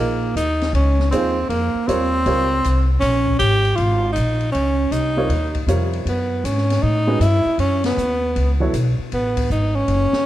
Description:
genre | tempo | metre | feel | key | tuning
modal jazz | 158 BPM | 4/4 | swing 65% on 8ths | Bb dorian | A4 = 439 Hz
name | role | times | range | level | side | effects
breathy tenor saxophone | melody | 0.0-10.3 s | Bb3 to G4 | -20 LUFS | equal | none
warm baby grand piano | accompaniment | 0.0-2.5, 5.2-8.7 s | C3 to Eb5 | -24 LUFS | right 2 dB | none
upright bass | bass | 0.0-10.2 s | Gb1 to A2 | -20 LUFS | equal | none
open jazz drum kit | drums | 0.4-10.2 s | hi-hat, kick drum, ride cymbal, snare drum | -30 LUFS | left 3 dB | none
room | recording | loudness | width
light reverb | dark, warm production | -16 LUFS | side -14 dB against mid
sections
0.0-10.3 A section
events
band accent 7.8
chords
0.0 Bbm11; 6.1 Gbmadd9

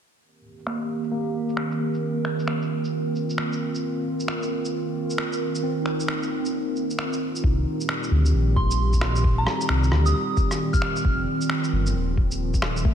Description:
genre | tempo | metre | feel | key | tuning
future garage | 133 BPM | 4/4 | swing 63% on 16ths | C minor | A4 = 440 Hz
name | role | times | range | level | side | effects
warbly tape-like pad | sustained chords | 0.6-12.9 s | Bb2 to Bb4 | -27 LUFS | right 2 dB | chorus, built-in reverb, sidechain pumping
electronic shaker, finger snaps and rim click | drums | 0.6-12.8 s | none | -30 LUFS | equal | low-pass filter on perc, low-pass filter on snare, low-pass filter on room
tine electric piano | accompaniment | 0.7-12.9 s | A3 to Eb4 | -31 LUFS | left 1 dB | medium stereo tremolo, sidechain pumping, low-pass filter, diffuse ambient delay
dark detuned saw bass | bass | 7.4-12.9 s | Eb1 to D2 | -22 LUFS | equal | sidechain pumping
electronic kick drum | drums | 7.4-12.9 s | none | -23 LUFS | equal | none
soft synth bell | melody | 8.6-11.1 s | Bb5 to F6 | -29 LUFS | right 1 dB | chorus, phaser, ping-pong delay
room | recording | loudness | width
moderate lush hall reverb, RT60 2.0 s | dreamy mix soaked in reverb | -22 LUFS | side -9 dB against mid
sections
0.2-7.4 A section; 7.4-12.9 B section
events
filter sweep on drum 0.2-7.4; filter sweep on tine electric piano 0.2-7.4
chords
0.2 Cm7; 3.8 F7sus4; 7.4 Cm7; 11.0 F7sus4

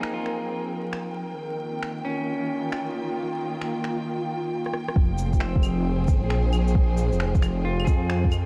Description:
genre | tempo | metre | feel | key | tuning
future garage | 134 BPM | 4/4 | swing 67% on 16ths | unclear | A4 = 445 Hz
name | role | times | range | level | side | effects
clean electric guitar | accompaniment | 0.0-8.5 s | Bb3 to Ab4 | -35 LUFS | equal | sidechain pumping, tape echo
rich symphonic string section | sustained chords | 0.0-8.5 s | Eb3 to G5 | -31 LUFS | equal | sidechain pumping
electronic finger snaps, rim click, shaker and claves | drums | 0.0-8.4 s | none | -37 LUFS | equal | none
wind-like tuned noise texture | texture | 0.0-4.1 s | Bb4 | -40 LUFS | equal | built-in reverb
swelling detuned saw bass | bass | 5.0-8.5 s | F1 to F2 | -27 LUFS | equal | tube saturation, sidechain pumping
electronic kick drum | drums | 5.0-8.3 s | none | -23 LUFS | equal | none
room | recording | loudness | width
light reverb, digital ambience | vinyl crackle | -25 LUFS | mono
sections
0.0-5.0 A section; 5.0-8.5 B section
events
drum fill 4.6-5.0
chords
0.0 Fm; 1.4 Eb7; 5.0 Fm

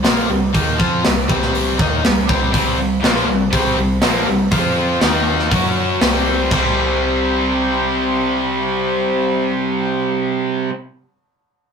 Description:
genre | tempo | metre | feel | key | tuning
hard rock | 120 BPM | 4/4 | straight | unclear | A4 = 438 Hz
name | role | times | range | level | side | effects
cranked stack guitar | riff | 0.0-10.7 s | Bb2 to F#4 | -20 LUFS | left 4 dB | overdrive
tight distorted guitar | riff | 0.0-10.7 s | Bb2 to F#4 | -21 LUFS | right 4 dB | distortion
hollow-body short-scale picked electric bass | bass | 0.0-10.7 s | Bb1 to F#2 | -24 LUFS | equal | none
tight metal drum kit | drums | 0.0-6.6 s | crash cymbal, hi-hat, kick drum, snare drum | -18 LUFS | equal | none
tight distorted guitar | riff | 2.5-10.7 s | Bb2 to F#4 | -22 LUFS | equal | distortion
room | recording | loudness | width
wet small room reverb, RT60 0.5 s | rough rehearsal-room recording, warm saturation | -14 LUFS | side -6 dB against mid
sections
0.0-6.5 A section; 6.5-10.5 B section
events
none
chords
0.0 C5; 4.5 F5; 5.0 Eb5; 5.5 F#5; 6.0 C5; 6.5 C

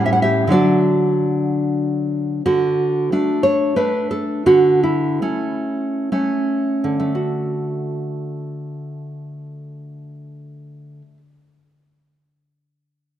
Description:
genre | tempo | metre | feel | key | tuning
romantic piece for solo classical guitar | 55-98 BPM | 3/4 | rubato | D major | A4 = 439 Hz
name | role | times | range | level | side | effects
nylon-string guitar | solo | 0.0-11.3 s | A2 to F#5 | -17 LUFS | equal | none
room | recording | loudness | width
moderate concert hall reverb, RT60 2.0 s | none | -16 LUFS | side -11 dB against mid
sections
0.0-2.5 A section; 2.5-7.2 B section; 7.2-13.1 C section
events
slowing down 1.5-7.2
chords
0.5 D; 4.5 A/D; 7.2 D

